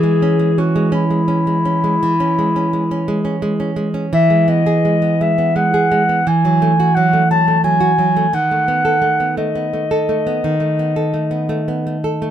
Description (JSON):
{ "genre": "romantic duo for clarinet and classical guitar", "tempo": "57 BPM (dotted quarters)", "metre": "12/8", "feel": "rubato", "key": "C# minor", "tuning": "A4 = 441 Hz", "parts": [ { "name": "dark clarinet", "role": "melody", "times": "0.0-12.3 s", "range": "E4 to A5", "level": "-17 LUFS", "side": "left 2 dB", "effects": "none" }, { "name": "nylon-string guitar", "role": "accompaniment", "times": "0.0-12.3 s", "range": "D#3 to A4", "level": "-16 LUFS", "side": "right 2 dB", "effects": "none" } ], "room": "light reverb", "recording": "minimal, uncompressed stereo recording", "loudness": "-14 LUFS", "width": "side -10 dB against mid", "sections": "0.0-12.3 A section", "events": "none", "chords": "0.0 C#m/E; 4.1 E; 6.3 F#m7/E; 8.3 B7/D#", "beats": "0.94 2.02 3.06 | 4.12 5.20 6.26 7.28 | 8.32 9.38 10.43 11.49" }